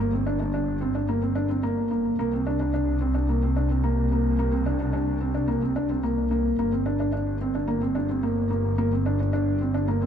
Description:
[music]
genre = piano and strings electronica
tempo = 109 BPM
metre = 4/4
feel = straight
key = G minor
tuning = A4 = 439 Hz
[part]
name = felt-muted upright piano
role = riff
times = 0.0-10.1 s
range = Bb3 to D4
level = -25 LUFS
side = right 1 dB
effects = ping-pong delay
[part]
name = clear studio double bass section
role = bass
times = 0.0-10.1 s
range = G1 to C2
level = -26 LUFS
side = left 1 dB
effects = tube saturation
[sound]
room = light reverb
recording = none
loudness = -22 LUFS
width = side -8 dB against mid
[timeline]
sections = 0.0-10.1 A section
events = none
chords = 0.0 Gm; 2.2 Bbadd9/C; 6.6 Gm

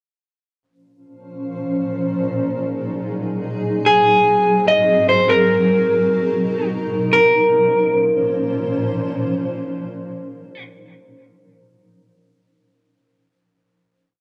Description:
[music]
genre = IDM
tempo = free time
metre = none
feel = none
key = Bb minor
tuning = A4 = 440 Hz
[part]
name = granular cloud pad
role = sustained chords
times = 1.3-10.6 s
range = Ab2 to C5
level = -23 LUFS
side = equal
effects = built-in reverb
[part]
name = electric guitar at the edge of break-up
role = melody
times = 3.9-10.6 s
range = Ab4 to Eb5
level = -17 LUFS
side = equal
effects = none
[sound]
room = moderate echo chamber reverb, RT60 1.6 s, digital ambience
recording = dry, gritty hardware recording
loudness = -18 LUFS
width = mono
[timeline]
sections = 0.6-7.1 groove; 7.1-10.4 final chord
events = none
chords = 0.6 Bbmadd9; 2.2 Gb6/Bb; 3.9 Ab7; 5.5 Bmaj7; 7.1 Bbmadd9

